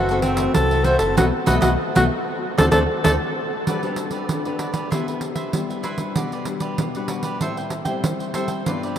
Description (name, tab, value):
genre	samba and choro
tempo	96 BPM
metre	4/4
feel	straight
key	G major from 3.7 s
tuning	A4 = 439 Hz
part	clear alto saxophone	melody	0.0-3.1 s	C4 to C5	-22 LUFS	equal	none
part	cavaquinho	accompaniment	0.0-9.0 s	E4 to G5	-29 LUFS	right 3 dB	none
part	nylon-string guitar	accompaniment	0.0-9.0 s	F#2 to B4	-26 LUFS	left 3 dB	none
part	fingered electric bass with an envelope filter	bass	0.0-3.2 s	F#1 to D2	-22 LUFS	equal	none
part	pandeiro	percussion	0.1-9.0 s	none	-25 LUFS	right 3 dB	none
room	wet huge ambient reverb, RT60 7.9 s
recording	in a vast, echoing space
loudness	-19 LUFS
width	side -10 dB against mid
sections	0.0-3.7 A section; 3.7-9.0 B section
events	band accent 1.2-3.7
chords	0.0 F#m7b5; 1.2 B7; 2.4 D5; 3.7 Gmaj7; 4.9 Cmaj7; 6.2 Gmaj7/B; 7.4 Am7